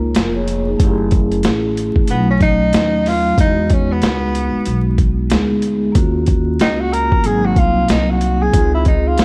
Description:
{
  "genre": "hip hop, jazz-hop",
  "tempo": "93 BPM",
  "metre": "4/4",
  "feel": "swing 61% on 16ths",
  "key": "unclear",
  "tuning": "A4 = 438 Hz",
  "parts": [
    { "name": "vibraphone with soft mallets", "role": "accompaniment", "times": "0.0-9.2 s", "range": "F#3 to Db5", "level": "-21 LUFS", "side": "equal", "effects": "none" },
    { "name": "upright bass", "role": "bass", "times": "0.0-9.2 s", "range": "F1 to E2", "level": "-22 LUFS", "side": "equal", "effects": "none" },
    { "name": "boom bap sampler-style drum kit", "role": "drums", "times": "0.1-9.2 s", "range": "hi-hat, kick drum, snare drum", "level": "-19 LUFS", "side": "equal", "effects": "overdrive" },
    { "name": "mellow tenor saxophone", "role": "melody", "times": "2.1-9.2 s", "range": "B3 to Bb4", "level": "-21 LUFS", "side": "equal", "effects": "none" }
  ],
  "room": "light reverb, studio reverb",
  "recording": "dark, warm production, vinyl crackle",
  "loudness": "-15 LUFS",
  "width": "mono",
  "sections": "0.0-9.2 A section",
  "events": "tenor saxophone solo 0.0-9.2",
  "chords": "0.0 Db69; 0.8 Gbm7; 2.1 B7; 3.4 Emaj7; 6.0 Ebm7; 7.3 Ab7; 8.5 Dbmaj7"
}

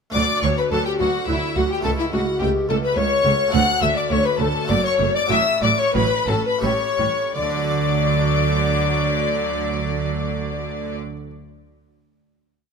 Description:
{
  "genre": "classical, baroque-style concerto movement with solo episodes",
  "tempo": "81-107 BPM",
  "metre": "3/4",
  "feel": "straight",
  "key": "D major",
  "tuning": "A4 = 440 Hz",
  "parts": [
    { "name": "mellow hollow tenor recorder", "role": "melody", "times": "0.1-11.0 s", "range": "E4 to F#5", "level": "-23 LUFS", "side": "left 4 dB", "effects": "none" },
    { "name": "rich chamber violin section", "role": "melody", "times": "0.1-11.0 s", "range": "E5 to F#6", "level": "-26 LUFS", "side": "left 4 dB", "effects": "none" },
    { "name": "harpsichord", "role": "accompaniment", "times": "0.1-11.3 s", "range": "C#2 to F#5", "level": "-30 LUFS", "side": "equal", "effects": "none" },
    { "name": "rich chamber viola section", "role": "accompaniment", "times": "0.1-11.0 s", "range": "F#3 to A3", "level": "-29 LUFS", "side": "right 3 dB", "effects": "none" },
    { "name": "clear chamber double bass section", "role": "bass", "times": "0.1-11.0 s", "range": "F#1 to D2", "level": "-26 LUFS", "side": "right 5 dB", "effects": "none" },
    { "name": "rich studio cello section", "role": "bass", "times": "0.1-11.0 s", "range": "C#2 to D3", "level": "-25 LUFS", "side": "right 4 dB", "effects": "none" },
    { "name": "rich chamber violin section", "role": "second line", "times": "0.2-11.0 s", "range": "E4 to F#5", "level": "-26 LUFS", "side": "left 3 dB", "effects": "none" }
  ],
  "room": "light reverb",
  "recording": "close, detailed microphones",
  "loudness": "-18 LUFS",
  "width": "side -5 dB against mid",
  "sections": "0.1-7.4 ritornello; 7.4-11.8 final chord",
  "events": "slowing down 2.7-7.4",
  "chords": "0.1 D; 1.8 A/C#; 3.5 D; 4.7 Dmaj7/F#; 5.3 A69; 6.6 A7; 7.4 D"
}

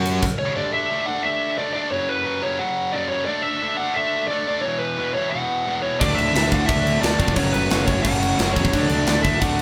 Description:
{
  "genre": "heavy metal",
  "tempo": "176 BPM",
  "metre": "4/4",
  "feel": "straight",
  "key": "unclear",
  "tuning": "A4 = 441 Hz",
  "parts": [
    { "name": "fuzz guitar", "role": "riff", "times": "0.0-0.2, 6.0-9.6 s", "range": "F#2 to F#4", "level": "-28 LUFS", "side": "equal", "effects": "distortion" },
    { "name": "heavy high-gain guitar", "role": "riff", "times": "0.0-9.6 s", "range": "E2 to F#4", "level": "-29 LUFS", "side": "equal", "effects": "distortion" },
    { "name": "tight distorted guitar", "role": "riff", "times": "0.0-0.2, 6.0-9.6 s", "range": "F#2 to F#4", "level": "-30 LUFS", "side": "equal", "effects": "distortion" },
    { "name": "fuzz fingered electric bass", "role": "bass", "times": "0.0-0.2, 6.0-9.6 s", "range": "F#1 to F#2", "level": "-27 LUFS", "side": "equal", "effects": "overdrive" },
    { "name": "tight metal drum kit", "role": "drums", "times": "0.1-0.3, 6.0-9.6 s", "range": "crash cymbal, kick drum, ride cymbal, snare drum", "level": "-26 LUFS", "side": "equal", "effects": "none" },
    { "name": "high-gain lead guitar", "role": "melody", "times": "0.4-9.6 s", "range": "B4 to F#5", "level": "-25 LUFS", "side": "equal", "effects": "distortion" }
  ],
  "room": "moderate large studio reverb, RT60 0.8 s",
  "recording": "band playing live in one room",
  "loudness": "-21 LUFS",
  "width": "mono",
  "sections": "0.6-9.6 A section",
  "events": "none",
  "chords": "0.2 N.C.; 0.6 D5; 1.9 F#5; 3.3 D5; 4.6 E5; 6.0 D; 7.4 F#m; 8.7 D"
}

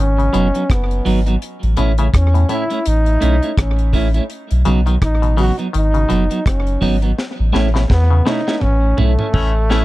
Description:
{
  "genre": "roots reggae",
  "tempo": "83 BPM",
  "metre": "4/4",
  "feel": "swing 58% on 16ths",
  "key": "unclear",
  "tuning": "A4 = 440 Hz",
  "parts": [
    { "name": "breathy trombone", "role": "melody", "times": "0.0-9.8 s", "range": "A3 to F#4", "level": "-22 LUFS", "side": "equal", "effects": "tape echo" },
    { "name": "muted clav", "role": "arpeggios", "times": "0.0-8.4 s", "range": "A2 to D#3", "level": "-24 LUFS", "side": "left 7 dB", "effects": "overdrive" },
    { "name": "warm sub bass", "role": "bass", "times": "0.0-9.8 s", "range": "F#1 to E2", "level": "-15 LUFS", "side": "equal", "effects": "none" },
    { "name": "deep reggae drum kit", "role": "drums", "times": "0.2-9.8 s", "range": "hi-hat, kick drum, rim click, snare drum, toms", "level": "-20 LUFS", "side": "equal", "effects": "slapback echo" },
    { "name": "clean electric guitar", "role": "accompaniment", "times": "0.3-9.8 s", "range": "F#3 to E4", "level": "-21 LUFS", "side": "right 3 dB", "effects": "tape echo" },
    { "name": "clear horn section", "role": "second line", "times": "9.3-9.8 s", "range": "E3 to E4", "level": "-23 LUFS", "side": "left 5 dB", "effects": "none" }
  ],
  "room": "little or no reverb",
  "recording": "dry, close 1970s-style studio recording",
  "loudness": "-13 LUFS",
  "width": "side -17 dB against mid",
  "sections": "0.0-9.8 A section",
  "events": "drum fill 7.2-9.8; band accent 7.2-9.8",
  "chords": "0.0 B; 1.4 A; 4.3 B; 7.2 A"
}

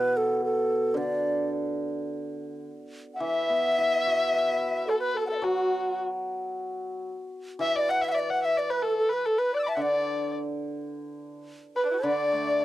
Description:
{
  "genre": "chinese traditional, Chinese chamber ensemble",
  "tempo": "109 BPM",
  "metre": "4/4",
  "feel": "rubato",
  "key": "D gong mode",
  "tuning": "A4 = 440 Hz",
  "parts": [
    { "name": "bright low xiao", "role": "melody", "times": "0.0-12.6 s", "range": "F#4 to F#5", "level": "-26 LUFS", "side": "right 1 dB", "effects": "none" },
    { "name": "hammered dulcimer", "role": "accompaniment", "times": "0.0-12.6 s", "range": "B2 to B4", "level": "-31 LUFS", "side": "equal", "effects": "none" },
    { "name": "dark erhu", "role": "second line", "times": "3.2-12.6 s", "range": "D4 to F#6", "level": "-29 LUFS", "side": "left 3 dB", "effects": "none" }
  ],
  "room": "light reverb",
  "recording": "none",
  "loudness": "-25 LUFS",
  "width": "side -15 dB against mid",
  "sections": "0.0-3.2 A section; 3.2-12.1 B section",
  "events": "none",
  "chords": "none"
}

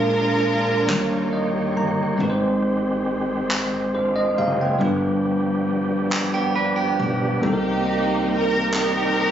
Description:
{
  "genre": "slow gospel",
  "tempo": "46 BPM (dotted quarters)",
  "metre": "6/8",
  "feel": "straight",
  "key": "unclear",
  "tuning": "A4 = 435 Hz",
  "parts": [
    { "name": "dark studio string section", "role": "melody", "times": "0.0-1.8, 7.4-9.3 s", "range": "Bb3 to Bb4", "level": "-21 LUFS", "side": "right 2 dB", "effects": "none" },
    { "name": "bell-like tine electric piano", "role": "accompaniment", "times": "0.0-9.3 s", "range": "G2 to Bb5", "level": "-22 LUFS", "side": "left 1 dB", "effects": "fast stereo tremolo" },
    { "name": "overdriven tonewheel organ", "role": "sustained chords", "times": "0.0-9.3 s", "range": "Eb3 to Db5", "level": "-27 LUFS", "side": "right 4 dB", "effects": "fast rotary speaker, chorus vibrato" },
    { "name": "upright bass", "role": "bass", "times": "0.0-9.3 s", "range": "Gb1 to Eb2", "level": "-30 LUFS", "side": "right 1 dB", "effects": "none" },
    { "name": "group handclap", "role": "percussion", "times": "0.9-9.1 s", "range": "none", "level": "-25 LUFS", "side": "equal", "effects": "none" },
    { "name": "clean electric guitar", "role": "second line", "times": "6.3-7.4 s", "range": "B3 to B4", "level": "-23 LUFS", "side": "right 6 dB", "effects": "none" }
  ],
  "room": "moderate large studio reverb, RT60 0.9 s, studio reverb",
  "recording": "recorded on a phone in the room, nothing above 7.7 kHz",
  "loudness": "-19 LUFS",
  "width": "side -9 dB against mid",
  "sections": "0.0-9.3 A section",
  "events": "tine electric piano fill 0.9-2.2",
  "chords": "0.0 Bb7; 0.9 Eb7; 2.2 Abmaj7; 4.8 G7; 7.4 Cm7"
}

